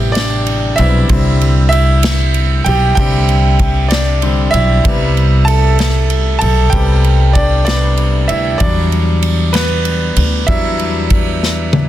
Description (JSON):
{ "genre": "six-eight pop ballad", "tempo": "64 BPM (dotted quarters)", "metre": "6/8", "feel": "straight", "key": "unclear", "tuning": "A4 = 441 Hz", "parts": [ { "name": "clear grand piano", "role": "accompaniment", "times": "0.0-11.9 s", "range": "C3 to A5", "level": "-16 LUFS", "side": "equal", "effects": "none" }, { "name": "upright bass", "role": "bass", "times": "0.0-11.9 s", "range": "A1 to E2", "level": "-13 LUFS", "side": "equal", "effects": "none" }, { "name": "unplugged drum kit", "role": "drums", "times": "0.2-11.9 s", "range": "kick drum, ride cymbal, snare drum, toms", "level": "-17 LUFS", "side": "equal", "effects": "none" } ], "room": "little or no reverb", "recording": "dense, heavily limited modern master", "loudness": "-10 LUFS", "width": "side -13 dB against mid", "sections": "0.0-11.9 A section", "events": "grand piano solo 0.0-11.9; drum fill 11.4-11.9", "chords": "0.0 Am7; 1.1 Csus2; 4.9 Am7; 8.6 Em7" }